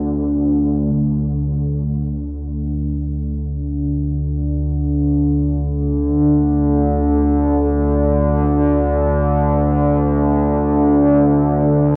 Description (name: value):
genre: dark ambient drone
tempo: free time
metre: none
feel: none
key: unclear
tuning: A4 = 436 Hz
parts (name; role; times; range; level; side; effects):
- analog drone; solo; 0.0-12.0 s; D2 to D3; -17 LUFS; equal; chorus, delay
room: wet huge ambient reverb, RT60 8.2 s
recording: worn, warbling old tape, cassette tape, warbly pitch drift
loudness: -17 LUFS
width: mono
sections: 0.9-12.0 A section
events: none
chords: none